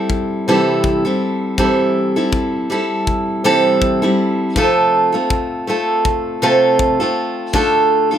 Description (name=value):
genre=acoustic pop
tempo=81 BPM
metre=4/4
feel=swing 55% on 16ths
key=C major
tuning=A4 = 440 Hz
part: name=picked steel-string acoustic guitar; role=accompaniment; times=0.0-8.2 s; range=C3 to A4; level=-14 LUFS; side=right 1 dB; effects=none
part: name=kick drum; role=drums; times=0.1-7.7 s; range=none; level=-21 LUFS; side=left 2 dB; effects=none
room=moderate studio ambience, RT60 0.5 s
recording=none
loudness=-14 LUFS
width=side -9 dB against mid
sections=0.0-8.2 A section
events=none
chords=0.0 C6; 4.6 F/C; 7.5 Dm